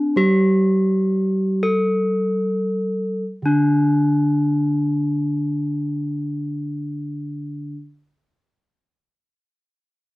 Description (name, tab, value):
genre	gamelan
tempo	free time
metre	none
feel	none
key	unclear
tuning	A4 = 438 Hz
part	gamelan-type bronze metallophone	melody	0.0-7.8 s	D4 to A4+25c	-20 LUFS	left 2 dB	none
part	gamelan-type bronze metallophone	accompaniment	0.0-7.7 s	D3 to C4-45c	-22 LUFS	right 2 dB	cassette tape
room	moderate booth ambience, RT60 0.2 s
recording	home recording on cassette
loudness	-18 LUFS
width	side -20 dB against mid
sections	0.0-3.2 A section; 3.2-9.9 B section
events	slowing down 0.0-3.2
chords	none